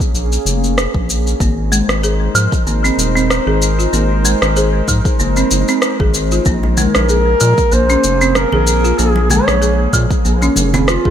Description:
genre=organic downtempo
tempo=95 BPM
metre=4/4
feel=swing 55% on 16ths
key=Bb minor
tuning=A4 = 444 Hz
part: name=warbly tape-like pad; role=sustained chords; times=0.0-11.1 s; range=Ab3 to C5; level=-21 LUFS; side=equal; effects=chorus, built-in reverb, sidechain pumping
part: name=electronic kick drum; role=drums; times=0.0-11.1 s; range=none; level=-17 LUFS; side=equal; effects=overdrive
part: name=electronic shaker and rim click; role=drums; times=0.0-11.0 s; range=none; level=-19 LUFS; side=left 1 dB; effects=overdrive
part: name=round analog bass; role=bass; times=0.1-11.1 s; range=Eb1 to Bb2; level=-16 LUFS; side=equal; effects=sidechain pumping
part: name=folk marimba with medium hard mallets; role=arpeggios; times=1.4-11.1 s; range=F3 to Ab4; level=-18 LUFS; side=equal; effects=ping-pong delay
part: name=congas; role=percussion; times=6.6-10.9 s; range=none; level=-22 LUFS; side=right 2 dB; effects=none
part: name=dark clarinet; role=melody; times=6.8-11.1 s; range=F4 to Db5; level=-16 LUFS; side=equal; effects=tape echo
room=light reverb, digital ambience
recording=none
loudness=-11 LUFS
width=side -9 dB against mid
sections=0.0-11.1 A section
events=none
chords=0.0 Bbm7; 1.4 Ab7; 6.5 Bb7(no3)

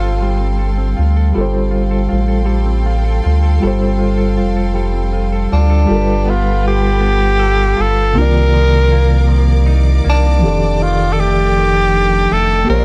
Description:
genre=R&B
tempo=53 BPM (dotted quarters)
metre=6/8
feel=straight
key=unclear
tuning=A4 = 443 Hz
part: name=breathy tenor saxophone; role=melody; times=0.0-0.6, 5.5-12.8 s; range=D4 to Bb4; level=-19 LUFS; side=equal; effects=tape echo
part: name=semi-hollow electric guitar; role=second line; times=0.0-12.8 s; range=F2 to C5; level=-25 LUFS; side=equal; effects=spring reverb
part: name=mellow reed electric piano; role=accompaniment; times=0.0-12.8 s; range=C3 to D5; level=-22 LUFS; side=equal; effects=fast tremolo
part: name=rich studio string section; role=sustained chords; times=0.0-12.8 s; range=A4 to D6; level=-30 LUFS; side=equal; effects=none
part: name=rubbery square bass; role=bass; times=0.0-12.8 s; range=F1 to D2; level=-16 LUFS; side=equal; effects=none
room=little or no reverb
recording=dry, close 1970s-style studio recording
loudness=-14 LUFS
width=mono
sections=0.0-1.4 A section; 1.4-5.9 B section; 5.9-12.8 C section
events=none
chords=0.0 G9sus4; 5.9 G9; 8.2 Cm11; 10.4 F13

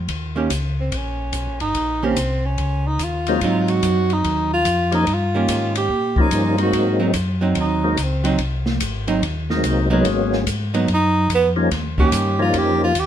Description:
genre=soul jazz organ trio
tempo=145 BPM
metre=4/4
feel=swing 65% on 8ths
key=unclear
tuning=A4 = 439 Hz
part: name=mellow tonewheel organ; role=bass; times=0.0-13.1 s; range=G1 to Bb2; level=-22 LUFS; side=equal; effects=chorus vibrato, stopped rotary speaker
part: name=open jazz drum kit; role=drums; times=0.1-13.1 s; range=hi-hat, kick drum, ride cymbal, snare drum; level=-26 LUFS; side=left 1 dB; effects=none
part: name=archtop guitar, miked and amplified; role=accompaniment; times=0.4-12.5 s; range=Eb3 to G4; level=-21 LUFS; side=right 4 dB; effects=none
part: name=breathy tenor saxophone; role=melody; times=0.8-8.3, 10.9-13.1 s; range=Cb4 to G4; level=-21 LUFS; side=right 1 dB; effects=none
part: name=percussive tonewheel organ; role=melody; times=3.3-12.9 s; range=F3 to Eb4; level=-20 LUFS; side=left 2 dB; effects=slow rotary speaker, overdrive, chorus vibrato
room=moderate studio reverb, RT60 0.8 s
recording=minimal, uncompressed stereo recording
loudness=-17 LUFS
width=side -10 dB against mid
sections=0.1-13.1 A section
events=tenor saxophone solo 0.1-13.1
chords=0.1 Eb7; 3.4 Ab7; 5.1 Eb7; 6.7 Ab7; 10.1 Abm7; 11.7 Eb7

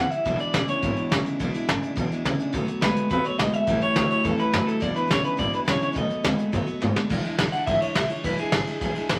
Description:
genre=rockabilly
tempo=210 BPM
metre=4/4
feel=straight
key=E mixolydian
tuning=A4 = 441 Hz
part: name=electric guitar through a small old amp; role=melody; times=0.0-9.2 s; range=G#4 to F#5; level=-28 LUFS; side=equal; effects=none
part: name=picked steel-string acoustic guitar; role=accompaniment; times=0.0-9.2 s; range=E2 to F#4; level=-33 LUFS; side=equal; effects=none
part: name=upright bass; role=bass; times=0.0-9.2 s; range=E1 to G#2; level=-33 LUFS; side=equal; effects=none
part: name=soft brush drum kit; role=drums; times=0.1-9.2 s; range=crash cymbal, hi-hat, kick drum, ride cymbal, snare drum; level=-29 LUFS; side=equal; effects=none
part: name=electric guitar through a small old amp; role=riff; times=0.3-7.1 s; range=E2 to G#3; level=-30 LUFS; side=equal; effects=none
room=moderate studio reverb, RT60 0.8 s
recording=vinyl crackle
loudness=-24 LUFS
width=mono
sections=0.0-7.1 A section; 7.1-9.2 B section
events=drum fill 6.8; clean electric guitar solo 7.1-9.2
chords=0.3 E7; 2.5 B7; 3.7 A7; 4.8 E7; 6.0 B7; 7.1 E7

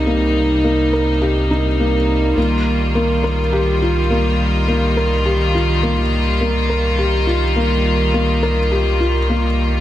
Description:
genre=electronica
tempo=104 BPM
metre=4/4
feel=straight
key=unclear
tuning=A4 = 439 Hz
part: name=rich chamber string section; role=sustained chords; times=0.0-9.8 s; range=C3 to F4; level=-20 LUFS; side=equal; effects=none
part: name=felt-muted upright piano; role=riff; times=0.0-9.8 s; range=Bb3 to Bb4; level=-18 LUFS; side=left 1 dB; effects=tape echo
part: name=round analog bass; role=bass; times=0.0-9.8 s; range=C2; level=-19 LUFS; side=equal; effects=none
room=moderate lush hall reverb, RT60 2.1 s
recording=none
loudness=-14 LUFS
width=side -13 dB against mid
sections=0.0-9.8 A section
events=none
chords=0.0 Cm7; 2.4 Ebadd9/C

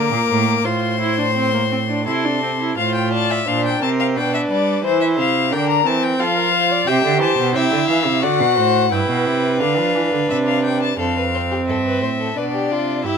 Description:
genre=classical, baroque-style fugue for string quartet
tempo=87 BPM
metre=3/4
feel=straight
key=F major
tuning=A4 = 440 Hz
part: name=rich violin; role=melody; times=0.0-13.2 s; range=C5 to D6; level=-20 LUFS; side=left 8 dB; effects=none
part: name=warm violin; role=second line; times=0.0-13.2 s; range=F4 to E5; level=-23 LUFS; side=left 3 dB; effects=none
part: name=warm viola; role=accompaniment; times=0.0-13.2 s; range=Bb3 to G4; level=-21 LUFS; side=right 2 dB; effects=none
part: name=rich cello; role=bass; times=0.0-13.2 s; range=F2 to G3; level=-22 LUFS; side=right 5 dB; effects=none
room=light reverb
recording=minimal, uncompressed stereo recording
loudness=-16 LUFS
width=side -6 dB against mid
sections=0.0-2.8 A section; 2.8-11.0 B section; 11.0-13.2 A section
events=none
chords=0.0 Bb; 0.6 F/A; 2.1 C; 2.8 F/A; 4.2 G/B; 4.8 C; 6.2 F; 6.9 C; 8.2 D7; 8.9 G; 10.3 C5; 11.0 F; 12.4 Bdim

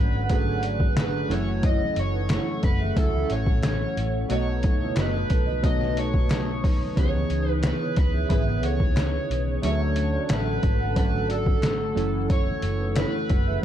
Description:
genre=indie pop, bedroom pop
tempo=90 BPM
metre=4/4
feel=straight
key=unclear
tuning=A4 = 438 Hz
part: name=overdriven slide guitar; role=melody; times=0.0-13.6 s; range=A4 to D#5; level=-30 LUFS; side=right 1 dB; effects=wide subtle chorus, tape echo
part: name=chorused retro synth keys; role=accompaniment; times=0.0-13.6 s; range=D#3 to B4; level=-32 LUFS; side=right 5 dB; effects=none
part: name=mellow electric guitar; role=accompaniment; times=0.0-13.6 s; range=F#2 to D#4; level=-32 LUFS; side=left 5 dB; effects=analog chorus, warbly pitch drift
part: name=warbly tape-like pad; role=sustained chords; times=0.0-13.6 s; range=A4 to E6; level=-37 LUFS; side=left 1 dB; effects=chorus, built-in reverb
part: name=vintage muted fingered electric bass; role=bass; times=0.0-13.6 s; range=F#1 to D2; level=-28 LUFS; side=equal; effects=none
part: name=vibraphone with medium mallets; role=second line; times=0.1-13.6 s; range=D#4 to F#5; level=-35 LUFS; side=right 6 dB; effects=ensemble chorus, tape echo
part: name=trip hop sampler-style drum kit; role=drums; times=0.3-13.5 s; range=hi-hat, kick drum, snare drum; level=-24 LUFS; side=equal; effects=overdrive
part: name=group handclap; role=percussion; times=1.0-13.1 s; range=none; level=-42 LUFS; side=left 7 dB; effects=none
room=light reverb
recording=dark, warm production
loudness=-21 LUFS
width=side -10 dB against mid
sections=0.0-13.6 A section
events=none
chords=0.0 Dmaj7; 1.3 F#m7; 4.3 B7; 7.0 C#m9; 9.6 Dmaj7; 12.0 F#m7

